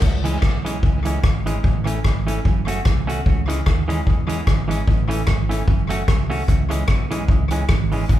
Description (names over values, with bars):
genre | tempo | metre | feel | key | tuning
ska | 149 BPM | 4/4 | swing 56% on 8ths | C# minor | A4 = 439 Hz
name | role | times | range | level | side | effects
fingered electric bass | bass | 0.0-8.2 s | F#1 to E2 | -24 LUFS | equal | none
street-band drum kit | drums | 0.0-8.2 s | crash cymbal, hi-hat, kick drum, rim click | -19 LUFS | equal | none
semi-hollow electric guitar | accompaniment | 0.2-8.0 s | E3 to F#4 | -26 LUFS | right 2 dB | tape echo
room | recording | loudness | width
light reverb | band playing live in one room | -17 LUFS | side -12 dB against mid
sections
0.0-8.2 A section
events
none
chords
0.0 C#m; 1.6 A; 2.4 F#m; 3.3 C#m; 4.9 A; 5.7 F#m; 6.5 C#m